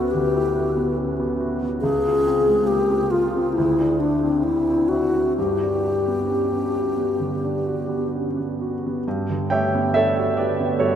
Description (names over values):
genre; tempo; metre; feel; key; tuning
classical, impressionist duo for alto flute and grand piano; 64-72 BPM; 4/4; rubato; G lydian; A4 = 440 Hz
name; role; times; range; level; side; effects
wooden-headed alto flute; melody; 0.0-8.1 s; D4 to G#4; -21 LUFS; left 2 dB; none
warm grand piano; accompaniment; 0.0-11.0 s; C#2 to G5; -22 LUFS; right 1 dB; none
room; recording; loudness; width
wet huge ambient reverb, RT60 7.4 s; in a vast, echoing space; -19 LUFS; side -9 dB against mid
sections
0.0-9.1 A section; 9.1-11.0 A section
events
none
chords
0.0 Em9/D; 1.8 C#maj7; 3.6 Dsus2; 5.4 Gmaj7; 9.1 Gmaj9